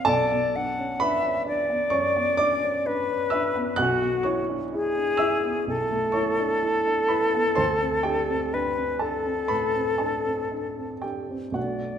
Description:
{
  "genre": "classical, impressionist duo for flute and grand piano",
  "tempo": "57-66 BPM",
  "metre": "4/4",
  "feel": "rubato",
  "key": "unclear",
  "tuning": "A4 = 440 Hz",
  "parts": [
    { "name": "bright concert flute", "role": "melody", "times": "0.0-12.0 s", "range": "F#4 to F#5", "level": "-24 LUFS", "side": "left 2 dB", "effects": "none" },
    { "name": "dark baby grand piano", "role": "accompaniment", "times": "0.0-12.0 s", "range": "B1 to F#6", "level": "-26 LUFS", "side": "right 2 dB", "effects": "none" }
  ],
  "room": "moderate recital hall reverb, RT60 1.6 s",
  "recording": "none",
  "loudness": "-22 LUFS",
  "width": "side -8 dB against mid",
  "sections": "0.0-12.0 A section",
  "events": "none",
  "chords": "0.1 F#m11/B; 7.6 D7sus4"
}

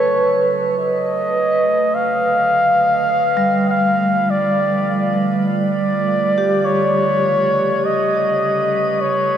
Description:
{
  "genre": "ambient",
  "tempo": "51 BPM",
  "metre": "4/4",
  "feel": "straight",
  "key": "unclear",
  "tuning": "A4 = 440 Hz",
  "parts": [
    { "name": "mellow flugelhorn", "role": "melody", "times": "0.0-9.4 s", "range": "C#5 to F5", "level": "-16 LUFS", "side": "equal", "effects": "diffuse ambient delay" },
    { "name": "glassy FM pad", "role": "sustained chords", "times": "0.0-9.4 s", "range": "C#3 to A4", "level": "-27 LUFS", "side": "right 2 dB", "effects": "ensemble chorus, built-in reverb" },
    { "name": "vibraphone with medium hard mallets", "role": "arpeggios", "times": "0.0-9.4 s", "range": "G3 to B4", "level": "-20 LUFS", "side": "right 2 dB", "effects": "diffuse ambient delay" },
    { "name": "drifting glass-harmonics texture", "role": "texture", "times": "0.4-9.4 s", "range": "B4 to B5", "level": "-37 LUFS", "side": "right 1 dB", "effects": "chorus, built-in reverb" }
  ],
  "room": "wet huge ambient reverb, RT60 7.0 s",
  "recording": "dreamy mix soaked in reverb, cassette tape",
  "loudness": "-14 LUFS",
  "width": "side -9 dB against mid",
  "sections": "0.0-9.4 A section",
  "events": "fade-in on ambient pad 0.0-9.4; fade-in on synth texture 0.0-9.4",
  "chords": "0.0 F#m; 1.9 Dm; 6.6 F#m (rootless)"
}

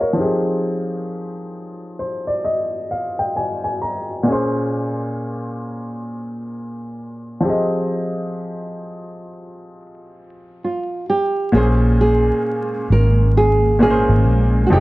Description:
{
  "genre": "lo-fi hip hop",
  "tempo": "66 BPM",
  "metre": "4/4",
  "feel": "swing 62% on 16ths",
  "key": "Bb minor",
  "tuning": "A4 = 444 Hz",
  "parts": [
    { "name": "warm upright piano", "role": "accompaniment", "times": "0.0-14.8 s", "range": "Bb2 to Bb5", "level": "-20 LUFS", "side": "equal", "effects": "none" },
    { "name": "nylon-string guitar", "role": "melody", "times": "10.6-14.8 s", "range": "F4 to Bb4", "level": "-19 LUFS", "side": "right 2 dB", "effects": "plate reverb" },
    { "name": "granular cloud pad", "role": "sustained chords", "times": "12.5-14.8 s", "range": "Ab3 to Db4", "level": "-27 LUFS", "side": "right 1 dB", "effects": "built-in reverb" },
    { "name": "vintage muted fingered electric bass", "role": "bass", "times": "11.5-14.8 s", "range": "F1 to Bb1", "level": "-15 LUFS", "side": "equal", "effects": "none" }
  ],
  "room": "moderate small room reverb, RT60 0.5 s",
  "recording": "dark, warm production, vinyl crackle, low-pass filter",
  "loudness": "-16 LUFS",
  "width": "side -19 dB against mid",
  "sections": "0.0-11.5 A section; 11.5-14.8 B section",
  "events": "filter sweep 0.0-11.5; upright piano fill 1.5-4.3",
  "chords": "0.2 Fm7; 4.3 Bbm7; 7.4 Fm7; 11.5 Bbm7"
}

